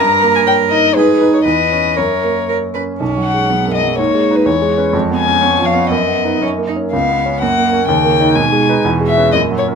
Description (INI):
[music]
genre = quick classical-period movement for piano trio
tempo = 114-128 BPM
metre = 2/4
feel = rubato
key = B major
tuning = A4 = 442 Hz
[part]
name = dark violin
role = melody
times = 0.0-9.7 s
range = B4 to A#5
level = -15 LUFS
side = left 7 dB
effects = none
[part]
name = clear cello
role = second line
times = 0.0-9.8 s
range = A#2 to B4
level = -18 LUFS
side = right 6 dB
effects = none
[part]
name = clear concert grand piano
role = accompaniment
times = 0.0-9.8 s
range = B1 to C#5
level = -15 LUFS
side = right 2 dB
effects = none
[sound]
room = moderate studio reverb, RT60 0.6 s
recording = minimal, uncompressed stereo recording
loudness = -11 LUFS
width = side -6 dB against mid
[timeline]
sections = 0.0-3.0 A section; 3.0-9.8 B section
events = none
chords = 0.0 D#7/G; 1.0 G#m; 1.4 C#m/E; 2.0 F#; 3.0 B5; 4.0 G#m; 4.5 C#m7/E; 4.9 Fdim; 5.9 B/F#; 6.4 F#; 6.9 C#7; 7.4 F#; 7.9 D#7; 8.4 G#m; 8.8 C#m7/E